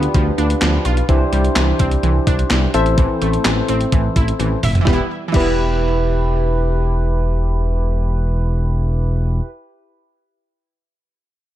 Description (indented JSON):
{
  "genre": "synth-pop",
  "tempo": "127 BPM",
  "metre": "4/4",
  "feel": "straight",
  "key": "E minor",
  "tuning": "A4 = 440 Hz",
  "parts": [
    { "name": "soft electric-piano-like synth keys", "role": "accompaniment", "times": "0.0-9.5 s", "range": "C4 to C5", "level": "-21 LUFS", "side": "equal", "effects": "chorus" },
    { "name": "wide unison pluck", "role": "arpeggios", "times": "0.0-9.5 s", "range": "E3 to E5", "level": "-23 LUFS", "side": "right 2 dB", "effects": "tape echo" },
    { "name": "smooth synth bass", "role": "bass", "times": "0.0-9.4 s", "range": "E1 to D2", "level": "-18 LUFS", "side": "equal", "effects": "none" },
    { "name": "gated 80s digital drum machine", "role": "drums", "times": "0.0-5.5 s", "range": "crash cymbal, handclaps, hi-hat, kick drum, snare drum, toms", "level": "-18 LUFS", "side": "equal", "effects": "gated reverb, gated reverb snare" }
  ],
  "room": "digital ambience",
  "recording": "dark, warm production",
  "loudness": "-15 LUFS",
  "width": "side -13 dB against mid",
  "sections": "0.0-4.9 A section; 4.9-8.6 B section",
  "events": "drum fill 4.4-4.9",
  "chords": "0.0 G7/D; 1.1 Cadd9; 2.7 Am; 4.9 Em"
}